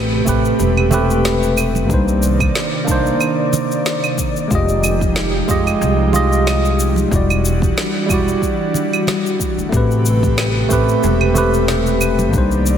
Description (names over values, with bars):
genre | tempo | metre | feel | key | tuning
sunset chillout | 92 BPM | 4/4 | swing 55% on 16ths | unclear | A4 = 441 Hz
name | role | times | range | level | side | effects
tine electric piano | accompaniment | 0.0-12.8 s | G3 to Eb5 | -18 LUFS | moving between left 3 dB and right 5 dB | auto-pan, tape echo, slapback echo
airy breathy pad | sustained chords | 0.0-12.8 s | C3 to D5 | -21 LUFS | equal | chorus
upright bass | bass | 0.0-12.8 s | E1 to D2 | -18 LUFS | equal | none
electronic kick drum | drums | 0.3-12.5 s | none | -20 LUFS | equal | none
electronic shaker, claves and snare drum | drums | 0.3-12.8 s | none | -24 LUFS | right 1 dB | slapback echo
congas | percussion | 0.9-12.3 s | none | -24 LUFS | right 5 dB | none
room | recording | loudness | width
moderate lush hall reverb, RT60 2.7 s | big arena sound | -14 LUFS | side -9 dB against mid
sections
0.0-12.8 A section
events
none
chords
0.0 Am9; 1.9 Cm9; 4.5 Fm9; 7.1 Em9; 9.7 Am9